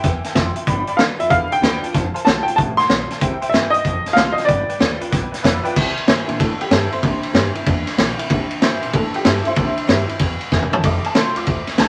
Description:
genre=rockabilly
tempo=189 BPM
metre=4/4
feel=swing 65% on 8ths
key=C mixolydian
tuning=A4 = 440 Hz
part: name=warm upright piano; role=melody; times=0.0-5.4 s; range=D5 to C6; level=-21 LUFS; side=equal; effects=none
part: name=honky-tonk upright piano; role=accompaniment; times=0.0-11.9 s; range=E3 to D6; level=-28 LUFS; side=equal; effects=none
part: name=picked acoustic archtop guitar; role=accompaniment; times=0.0-11.9 s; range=F2 to F4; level=-31 LUFS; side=equal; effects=none
part: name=upright bass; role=bass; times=0.0-11.9 s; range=F1 to Bb2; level=-27 LUFS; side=equal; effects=none
part: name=vintage drum kit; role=drums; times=0.0-11.9 s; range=crash cymbal, hi-hat, kick drum, ride cymbal, snare drum, toms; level=-21 LUFS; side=equal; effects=none
room=moderate club reverb, RT60 0.7 s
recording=vinyl crackle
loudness=-18 LUFS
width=mono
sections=0.0-5.8 A section; 5.8-11.9 B section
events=honky-tonk piano solo 5.8-11.9; drum fill 10.5-10.8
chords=0.0 C; 0.7 G7; 1.9 F7; 3.2 C7; 3.9 F7; 4.5 G7; 5.8 C7; 10.8 F7

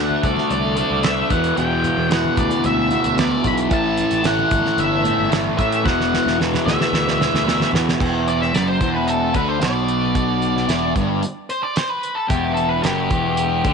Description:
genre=psychedelic rock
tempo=112 BPM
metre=4/4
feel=straight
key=E minor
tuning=A4 = 440 Hz
part: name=octave-fuzz lead guitar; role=melody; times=0.0-13.7 s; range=G4 to B5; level=-22 LUFS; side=equal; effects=distortion, slapback echo
part: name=fuzz guitar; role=riff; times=0.0-13.7 s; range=E2 to D4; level=-20 LUFS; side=equal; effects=distortion, phaser
part: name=fuzz picked electric bass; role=bass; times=0.0-13.7 s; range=E1 to A2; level=-25 LUFS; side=left 1 dB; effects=overdrive
part: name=congas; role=percussion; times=0.1-7.9 s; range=none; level=-32 LUFS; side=left 8 dB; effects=none
part: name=damped 70s drum kit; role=drums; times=0.2-13.7 s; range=crash cymbal, hi-hat, kick drum, snare drum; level=-23 LUFS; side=right 2 dB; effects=none
room=light reverb, small room ambience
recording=1960s-style stereo, nothing above 10.3 kHz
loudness=-16 LUFS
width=side -5 dB against mid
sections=0.0-8.0 A section; 8.0-13.7 B section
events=drum fill 5.9-8.0; lead electric guitar solo 8.0-13.7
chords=0.0 D5; 1.3 Em7; 3.7 A5; 5.9 E5; 8.0 Em

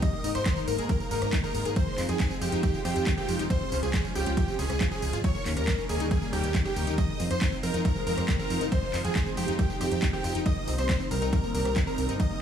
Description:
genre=uplifting trance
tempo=138 BPM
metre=4/4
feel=straight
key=F minor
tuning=A4 = 440 Hz
part: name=big supersaw lead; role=melody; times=0.0-12.4 s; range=G4 to Eb5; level=-33 LUFS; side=right 1 dB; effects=sidechain pumping, digital delay
part: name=clear grand piano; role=second line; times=0.0-12.4 s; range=G4 to Eb5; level=-38 LUFS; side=left 1 dB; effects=sidechain pumping, digital delay
part: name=lush unison pad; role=sustained chords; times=0.0-12.4 s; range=G3 to C5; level=-36 LUFS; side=equal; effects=chorus, phaser, sidechain pumping
part: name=analog pluck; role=arpeggios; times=0.0-12.4 s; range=Eb3 to Ab4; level=-35 LUFS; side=left 3 dB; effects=chorus, sidechain pumping, digital delay
part: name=electronic kick drum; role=drums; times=0.0-12.3 s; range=none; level=-28 LUFS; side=equal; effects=overdrive
part: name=house drum kit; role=drums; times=0.0-12.3 s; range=handclaps, hi-hat, ride cymbal, rim click, tambourine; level=-36 LUFS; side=equal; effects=overdrive
part: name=plucky analog bass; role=bass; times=0.2-12.2 s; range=F1 to Ab2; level=-30 LUFS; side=right 1 dB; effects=sidechain pumping
room=little or no reverb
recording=small room ambience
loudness=-25 LUFS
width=side -8 dB against mid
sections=0.0-12.4 A section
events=none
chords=0.0 Absus2; 1.8 Fm7; 3.5 Dbmaj7; 5.2 Eb7; 7.0 Fm7; 10.5 Cm7

